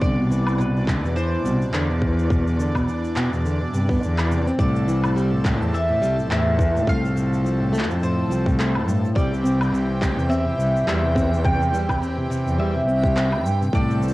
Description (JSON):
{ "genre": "folktronica", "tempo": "105 BPM", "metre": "4/4", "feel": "swing 56% on 16ths", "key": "C major", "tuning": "A4 = 441 Hz", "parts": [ { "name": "mandolin", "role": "melody", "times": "0.0-14.1 s", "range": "B4 to G5", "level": "-27 LUFS", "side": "right 1 dB", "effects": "vintage 12-bit sampler grit, plate reverb" }, { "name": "accordion", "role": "sustained chords", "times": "0.0-14.1 s", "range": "E3 to D5", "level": "-32 LUFS", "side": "equal", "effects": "plate reverb" }, { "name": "fingerpicked plugged-in steel-string acoustic guitar", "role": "arpeggios", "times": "0.0-14.1 s", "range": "A2 to G4", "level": "-25 LUFS", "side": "equal", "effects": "plate reverb" }, { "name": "dark cello", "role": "bass", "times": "0.0-14.1 s", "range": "C2 to G2", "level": "-22 LUFS", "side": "equal", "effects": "none" }, { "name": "electronic kick drum", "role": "drums", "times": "0.0-13.9 s", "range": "none", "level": "-23 LUFS", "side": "equal", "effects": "overdrive, cassette tape" }, { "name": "electronic shaker, woodblock and handclaps", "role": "drums", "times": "0.0-14.1 s", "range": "none", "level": "-30 LUFS", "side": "equal", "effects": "overdrive, cassette tape" }, { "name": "backwards swelling texture", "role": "texture", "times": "5.7-14.1 s", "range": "G5", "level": "-38 LUFS", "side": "right 5 dB", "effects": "none" } ], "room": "light reverb", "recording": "home recording on cassette", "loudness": "-19 LUFS", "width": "side -18 dB against mid", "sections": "0.0-4.6 A section; 4.6-14.1 B section", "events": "none", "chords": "0.0 Cmaj9; 4.6 Am7/C; 6.9 F/C; 9.2 C", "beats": "| 0.01 0.59 1.16 1.73 | 2.30 2.87 3.44 4.01 | 4.59 5.16 5.73 6.30 | 6.87 7.44 8.02 8.59 | 9.16 9.73 10.30 10.87 | 11.44 12.02 12.59 13.16 | 13.73" }